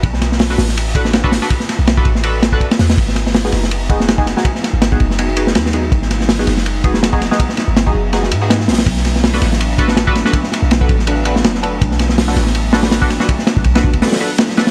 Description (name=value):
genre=drum and bass, jungle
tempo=163 BPM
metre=4/4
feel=swing 55% on 16ths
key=unclear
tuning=A4 = 438 Hz
part: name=warm 808-style bass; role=bass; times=0.0-14.0 s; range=F#1 to G#2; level=-20 LUFS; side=equal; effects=tube saturation
part: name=crunchy breakbeat drum kit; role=drums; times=0.0-14.7 s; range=hi-hat, kick drum, ride cymbal, snare drum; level=-17 LUFS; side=equal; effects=none
part: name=band-passed chord stab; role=stabs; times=0.5-14.7 s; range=B3 to B4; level=-23 LUFS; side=equal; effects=phaser, analog chorus, dub echo
part: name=airy breathy pad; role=sustained chords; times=3.0-14.7 s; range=F#3 to D#4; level=-26 LUFS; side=equal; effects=chorus
room=little or no reverb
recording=dry, gritty hardware recording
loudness=-14 LUFS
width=mono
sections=0.0-14.7 A section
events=none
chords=0.0 Bm7; 3.0 G#m7; 8.9 Bm7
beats=| 0.03 0.40 0.77 1.14 | 1.51 1.87 2.24 2.61 | 2.98 3.35 3.71 4.08 | 4.45 4.82 5.19 5.55 | 5.92 6.29 6.66 7.03 | 7.39 7.76 8.13 8.50 | 8.87 9.24 9.60 9.97 | 10.34 10.71 11.08 11.44 | 11.81 12.18 12.55 12.92 | 13.29 13.65 14.02 14.39